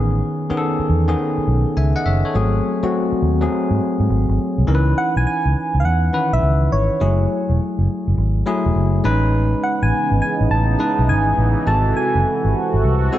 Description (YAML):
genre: R&B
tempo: 103 BPM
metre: 4/4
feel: swing 66% on 16ths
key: C# minor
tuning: A4 = 438 Hz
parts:
  - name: bell-like tine electric piano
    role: accompaniment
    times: 0.0-13.2 s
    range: D#3 to G#5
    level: -21 LUFS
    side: left 2 dB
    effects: lush chorus
  - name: vintage muted fingered electric bass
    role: bass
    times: 0.0-13.1 s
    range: E1 to G#2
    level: -17 LUFS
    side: equal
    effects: none
  - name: soft struck synth lead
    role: melody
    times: 5.0-12.8 s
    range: C#5 to A5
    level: -22 LUFS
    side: right 1 dB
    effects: chorus
  - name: sweeping resonant pad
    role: sustained chords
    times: 9.3-13.2 s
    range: B#2 to A4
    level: -22 LUFS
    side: right 2 dB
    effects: chorus
room: moderate plate reverb, RT60 2.6 s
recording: dreamy mix soaked in reverb, nothing above 7.9 kHz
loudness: -16 LUFS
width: side -13 dB against mid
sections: 0.0-4.7 A section; 4.7-13.2 B section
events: none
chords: 0.0 Amaj9#11; 2.3 G#7b9; 4.7 C#m9; 7.0 F#m9; 9.0 Amaj9#11; 11.7 G#7b9